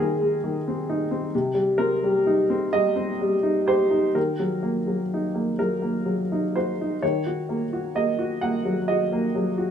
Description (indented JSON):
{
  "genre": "neoclassical minimalist piano",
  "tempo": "43 BPM (dotted quarters)",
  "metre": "6/8",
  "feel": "rubato",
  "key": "Eb dorian",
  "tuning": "A4 = 438 Hz",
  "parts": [
    { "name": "clear upright piano", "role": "solo", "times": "0.0-9.7 s", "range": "Ab2 to Gb5", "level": "-21 LUFS", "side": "equal", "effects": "none" }
  ],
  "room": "moderate large studio reverb, RT60 0.9 s",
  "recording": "band playing live in one room",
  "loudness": "-21 LUFS",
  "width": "side -8 dB against mid",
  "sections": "0.0-7.0 A section; 7.0-9.7 B section",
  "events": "none",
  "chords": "0.0 Ab; 1.3 Cm; 4.2 Ebm",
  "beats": "| 1.33 2.75 | 4.16 5.59 | 7.02 8.41"
}